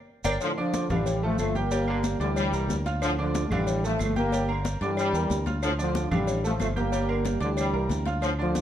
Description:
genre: latin, salsa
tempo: 184 BPM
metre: 4/4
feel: straight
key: D minor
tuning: A4 = 440 Hz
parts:
  - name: bright concert grand piano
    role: accompaniment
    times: 0.2-8.6 s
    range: D3 to G6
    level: -34 LUFS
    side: right 4 dB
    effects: none
  - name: fingered electric bass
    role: bass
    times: 0.2-8.6 s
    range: G1 to G2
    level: -29 LUFS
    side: equal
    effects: none
  - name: congas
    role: percussion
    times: 0.2-8.6 s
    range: none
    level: -34 LUFS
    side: left 3 dB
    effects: none
  - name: cowbell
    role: percussion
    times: 0.2-8.6 s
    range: none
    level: -36 LUFS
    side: left 5 dB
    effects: none
  - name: maracas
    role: percussion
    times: 0.2-8.6 s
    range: none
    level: -43 LUFS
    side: right 5 dB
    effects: none
  - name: claves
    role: percussion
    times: 0.3-8.4 s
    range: none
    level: -41 LUFS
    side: right 5 dB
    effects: none
  - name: warm trombone section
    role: melody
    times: 0.4-8.6 s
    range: A2 to Bb3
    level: -28 LUFS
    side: equal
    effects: none
  - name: bright trombone section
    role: second line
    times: 0.4-8.6 s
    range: D3 to G3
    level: -33 LUFS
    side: left 2 dB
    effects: none
room: moderate large studio reverb, RT60 1.4 s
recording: close, detailed microphones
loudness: -24 LUFS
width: side -10 dB against mid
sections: 0.4-8.6 A section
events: drum fill 0.0-0.4; band accent 0.0-0.4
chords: 0.4 Dm; 1.7 Gm; 3.0 Dm; 4.3 Gm; 5.6 Dm; 6.9 Gm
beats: 0.08 | 0.41 0.73 1.06 1.39 | 1.71 2.04 2.37 2.69 | 3.02 3.35 3.67 4.00 | 4.32 4.65 4.97 5.30 | 5.62 5.95 6.28 6.60 | 6.93 7.25 7.58 7.90 | 8.23 8.56

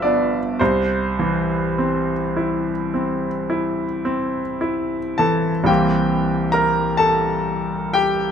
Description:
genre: classical, romantic nocturne for solo piano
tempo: 34-47 BPM (dotted quarters)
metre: 9/8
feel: rubato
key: C major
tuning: A4 = 440 Hz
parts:
  - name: bright baby grand piano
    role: solo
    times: 0.0-8.3 s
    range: G1 to Bb5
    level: -18 LUFS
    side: equal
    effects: none
room: light reverb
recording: close, detailed microphones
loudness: -18 LUFS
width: side -8 dB against mid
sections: 0.0-5.7 A section; 5.7-8.3 B section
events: none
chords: 0.0 G7; 0.6 C; 5.7 C7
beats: | 0.59 2.35 4.05 | 5.69 6.98

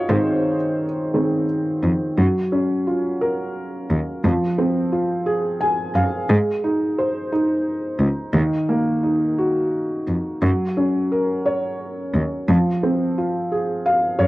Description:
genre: six-eight pop ballad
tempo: 58 BPM (dotted quarters)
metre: 6/8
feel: straight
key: unclear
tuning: A4 = 442 Hz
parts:
  - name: felt-muted upright piano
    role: accompaniment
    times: 0.0-14.3 s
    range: Eb3 to Ab5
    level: -20 LUFS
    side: equal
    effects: cassette tape
  - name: warm cello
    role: bass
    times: 0.1-14.3 s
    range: Db2 to Ab2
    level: -19 LUFS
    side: equal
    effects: none
room: moderate spring reverb, RT60 1.4 s, small room ambience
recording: home recording on cassette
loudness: -18 LUFS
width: side -18 dB against mid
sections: 0.0-2.2 A section; 2.2-14.3 B section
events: felt piano solo 0.0-2.2; felt piano fill 5.3-6.3, 13.5-14.3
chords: 0.0 Ab; 2.2 Gbmaj7; 4.2 Fm; 6.3 Ab; 8.3 Ebm; 10.4 Gb; 12.5 Fm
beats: | 0.09 1.13 | 2.17 3.21 | 4.24 5.27 | 6.29 7.32 | 8.34 9.38 | 10.42 11.45 | 12.49 13.51

